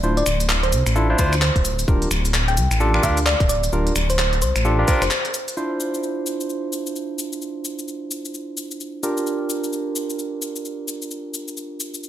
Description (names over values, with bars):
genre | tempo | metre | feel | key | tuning
UK garage, two-step garage | 130 BPM | 4/4 | swing 60% on 16ths | D minor | A4 = 440 Hz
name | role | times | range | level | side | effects
barky tine electric piano | stabs | 0.0-12.1 s | D4 to C5 | -25 LUFS | right 1 dB | overdrive, vintage 12-bit sampler grit, tape echo
dark detuned saw bass | bass | 0.0-5.1 s | D1 to D2 | -21 LUFS | equal | sidechain pumping
garage drum kit | drums | 0.0-12.1 s | cabasa, finger snaps, handclaps, hi-hat | -25 LUFS | left 1 dB | none
thumb-piano-like synth pluck | melody | 0.2-5.3 s | C5 to G5 | -26 LUFS | equal | chorus, tape echo
electronic kick drum | drums | 1.2-5.0 s | none | -21 LUFS | equal | none
room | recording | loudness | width
light reverb | none | -19 LUFS | side -12 dB against mid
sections
0.0-5.6 A section; 5.6-12.1 B section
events
break 5.1-5.6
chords
0.0 Dm9; 1.6 Gm7/D; 5.6 Dm9; 9.0 Gm7/D